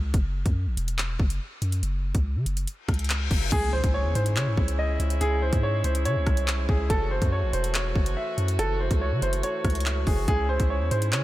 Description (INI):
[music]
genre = hip hop, drill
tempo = 142 BPM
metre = 4/4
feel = half-time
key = C# harmonic minor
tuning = A4 = 439 Hz
[part]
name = long sustained 808-style bass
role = bass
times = 0.0-11.2 s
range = E1 to C#3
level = -26 LUFS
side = equal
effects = none
[part]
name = drill drum kit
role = drums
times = 0.1-11.2 s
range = crash cymbal, handclaps, hi-hat, kick drum, rim click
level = -27 LUFS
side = equal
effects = none
[part]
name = reverse cymbal and impact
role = sound effects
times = 2.9-5.2 s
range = none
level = -36 LUFS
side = left 3 dB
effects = none
[part]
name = clear concert grand piano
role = melody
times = 3.5-11.2 s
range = G#4 to E5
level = -28 LUFS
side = right 1 dB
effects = low-pass filter, diffuse ambient delay
[part]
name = warm brass ensemble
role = sustained chords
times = 3.5-11.2 s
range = E3 to F#4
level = -34 LUFS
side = right 1 dB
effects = none
[sound]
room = light reverb, digital ambience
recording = none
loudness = -23 LUFS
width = side -16 dB against mid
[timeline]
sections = 0.0-3.5 A section; 3.5-11.2 B section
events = reverse cymbal 2.9-3.5; impact 3.5-5.2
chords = 0.1 F#7(no3); 3.5 C#m; 6.9 F#m7; 10.3 C#m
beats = | 0.14 0.56 0.98 1.41 | 1.83 2.25 2.67 3.10 | 3.52 3.94 4.36 4.79 | 5.21 5.63 6.05 6.48 | 6.90 7.32 7.75 8.17 | 8.59 9.01 9.44 9.86 | 10.28 10.70 11.12